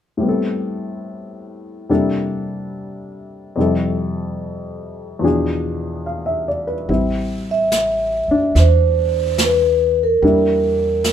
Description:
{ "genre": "jazz ballad", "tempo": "72 BPM", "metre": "4/4", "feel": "swing 68% on 8ths", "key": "A minor", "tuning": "A4 = 436 Hz", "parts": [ { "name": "warm baby grand piano", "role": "accompaniment", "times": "0.2-11.1 s", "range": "E2 to F5", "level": "-20 LUFS", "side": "left 2 dB", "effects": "none" }, { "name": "upright bass", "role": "bass", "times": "6.9-11.1 s", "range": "A1 to E2", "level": "-19 LUFS", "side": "right 1 dB", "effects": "none" }, { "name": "jazz brush drum kit", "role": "drums", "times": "6.9-11.1 s", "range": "brushed snare drum, hi-hat, snare drum", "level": "-22 LUFS", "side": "right 1 dB", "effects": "none" }, { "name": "vibraphone with soft mallets", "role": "melody", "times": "7.5-11.1 s", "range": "Bb4 to E5", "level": "-16 LUFS", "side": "right 1 dB", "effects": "none" } ], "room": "light reverb", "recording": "minimal, uncompressed stereo recording", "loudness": "-16 LUFS", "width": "side -9 dB against mid", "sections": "0.2-6.9 A section; 6.9-11.1 B section", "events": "none", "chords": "0.2 Am9; 1.9 C13; 3.6 Fmaj9; 5.2 E7b9; 6.9 Am7; 10.2 Em7b5" }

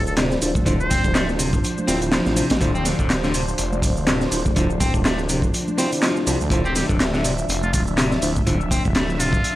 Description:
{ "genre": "breakbeat, breaks", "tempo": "123 BPM", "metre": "4/4", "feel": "swing 57% on 16ths", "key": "D minor", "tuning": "A4 = 441 Hz", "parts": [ { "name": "trumpet with metal mute", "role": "melody", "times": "0.0-1.3, 6.7-9.6 s", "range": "F4 to C5", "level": "-28 LUFS", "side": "equal", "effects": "AM radio sound, vintage 12-bit sampler grit, analog delay" }, { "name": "phased analog pad", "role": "sustained chords", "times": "0.0-9.6 s", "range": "F3 to E5", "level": "-27 LUFS", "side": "left 1 dB", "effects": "phaser, chorus, sidechain pumping" }, { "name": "phased detuned saw bass", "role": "bass", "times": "0.0-9.4 s", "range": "D1 to D2", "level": "-25 LUFS", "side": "equal", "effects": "phaser" }, { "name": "punchy analog drum machine", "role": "drums", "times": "0.1-9.6 s", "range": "handclaps, hi-hat, shaker", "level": "-28 LUFS", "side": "right 1 dB", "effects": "none" }, { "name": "congas", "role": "percussion", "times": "0.1-9.2 s", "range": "none", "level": "-34 LUFS", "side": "right 2 dB", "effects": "none" }, { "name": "electric guitar at the edge of break-up", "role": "riff", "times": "0.2-9.3 s", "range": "C3 to C4", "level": "-27 LUFS", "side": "left 1 dB", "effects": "tube saturation, analog delay" }, { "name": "crunchy breakbeat drum kit", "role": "drums", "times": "0.2-9.6 s", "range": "hi-hat, kick drum, snare drum", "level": "-21 LUFS", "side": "equal", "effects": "none" }, { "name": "bell-like tine electric piano", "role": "stabs", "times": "0.4-8.5 s", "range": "D4 to C5", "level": "-27 LUFS", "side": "right 2 dB", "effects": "analog delay" } ], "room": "studio ambience", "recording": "dry, gritty hardware recording, vinyl crackle", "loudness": "-18 LUFS", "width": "side -15 dB against mid", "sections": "0.0-9.6 A section", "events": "none", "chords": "0.0 Dm9" }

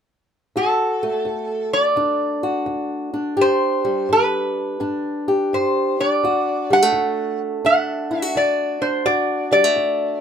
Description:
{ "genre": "acoustic country blues, solo or duo", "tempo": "85 BPM", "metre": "4/4", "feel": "swing 66% on 8ths", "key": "D major", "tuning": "A4 = 440 Hz", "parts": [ { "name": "metal-body resonator slide guitar", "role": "melody", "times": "0.6-10.2 s", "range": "A4 to F#5", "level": "-19 LUFS", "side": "right 1 dB", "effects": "none" }, { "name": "fingerpicked old ladder-braced acoustic guitar", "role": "accompaniment", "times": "0.6-10.2 s", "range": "D2 to G4", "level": "-22 LUFS", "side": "left 1 dB", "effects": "none" } ], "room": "moderate booth ambience, RT60 0.2 s", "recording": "minimal, uncompressed stereo recording", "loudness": "-17 LUFS", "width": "side -8 dB against mid", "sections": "0.6-10.2 A section", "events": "none", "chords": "0.6 D; 3.4 G; 6.2 D" }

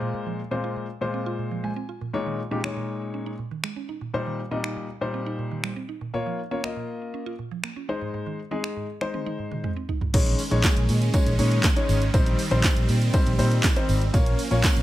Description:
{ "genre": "dance-pop", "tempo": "120 BPM", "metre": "4/4", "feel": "straight", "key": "unclear", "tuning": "A4 = 440 Hz", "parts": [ { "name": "clear grand piano", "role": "accompaniment", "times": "0.0-14.8 s", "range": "Bb2 to Ab5", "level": "-28 LUFS", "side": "left 3 dB", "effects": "sidechain pumping" }, { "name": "mallet-like synth pluck", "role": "arpeggios", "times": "0.0-10.1 s", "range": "Ab2 to F4", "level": "-35 LUFS", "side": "right 6 dB", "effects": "chorus, sidechain pumping, ping-pong delay" }, { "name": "punchy analog drum machine", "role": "drums", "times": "2.6-14.8 s", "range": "crash cymbal, finger snaps, handclaps, hi-hat, kick drum, snare drum, toms", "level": "-23 LUFS", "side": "equal", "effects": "none" }, { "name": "supersaw chords", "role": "sustained chords", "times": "10.1-14.8 s", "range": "Eb3 to Db4", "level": "-30 LUFS", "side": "right 3 dB", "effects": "sidechain pumping" }, { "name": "vintage muted fingered electric bass", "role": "bass", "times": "10.1-14.8 s", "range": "Ab1 to Bb2", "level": "-23 LUFS", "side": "equal", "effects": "sidechain pumping" }, { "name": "tambourine", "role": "percussion", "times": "10.1-14.8 s", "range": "none", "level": "-39 LUFS", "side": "right 8 dB", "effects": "none" } ], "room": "little or no reverb", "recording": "none", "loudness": "-23 LUFS", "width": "side -14 dB against mid", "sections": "0.0-10.1 A section; 10.1-14.8 B section", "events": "grand piano fill 1.4-2.1; drum fill 9.1-10.1", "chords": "0.0 Fm/Bb; 2.1 Dbsus2/Bb; 4.1 Cm/Bb; 6.1 Bbm; 7.9 Ab; 10.1 Dbsus2/Bb; 12.1 Cm/Bb; 14.1 Bbm" }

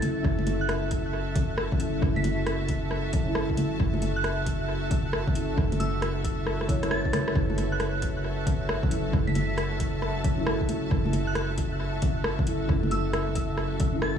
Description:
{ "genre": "future garage", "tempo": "135 BPM", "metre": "4/4", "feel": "swing 64% on 16ths", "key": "F# minor", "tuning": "A4 = 438 Hz", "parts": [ { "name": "soft synth bell", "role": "melody", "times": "0.0-14.2 s", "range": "E6 to B6", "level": "-36 LUFS", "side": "right 3 dB", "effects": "chorus, tape echo" }, { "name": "muted felt-like synth keys", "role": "accompaniment", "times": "0.0-14.2 s", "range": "F#3 to C#5", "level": "-32 LUFS", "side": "left 1 dB", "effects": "chorus, sidechain pumping, analog delay" }, { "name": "clear studio string section", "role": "sustained chords", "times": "0.0-14.2 s", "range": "F#4 to A5", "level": "-36 LUFS", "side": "equal", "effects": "sidechain pumping" }, { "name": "soft 808-style bass", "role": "bass", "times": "0.0-14.2 s", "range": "F#1", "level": "-31 LUFS", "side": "equal", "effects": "sidechain pumping" }, { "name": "deep house drum kit", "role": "drums", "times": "0.0-14.1 s", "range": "bongos, hi-hat, rim click", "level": "-32 LUFS", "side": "left 1 dB", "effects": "overdrive, tape echo" }, { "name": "wind-like tuned noise texture", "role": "texture", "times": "0.0-14.2 s", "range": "E5", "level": "-42 LUFS", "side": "left 2 dB", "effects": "built-in reverb" }, { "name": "electronic kick drum", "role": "drums", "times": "0.2-14.2 s", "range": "none", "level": "-29 LUFS", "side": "equal", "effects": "overdrive" } ], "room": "light reverb, digital ambience", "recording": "echo-heavy mix, small room reverb", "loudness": "-24 LUFS", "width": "side -8 dB against mid", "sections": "0.0-14.2 A section", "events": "drum fill 6.5-7.4", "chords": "0.0 F#m7" }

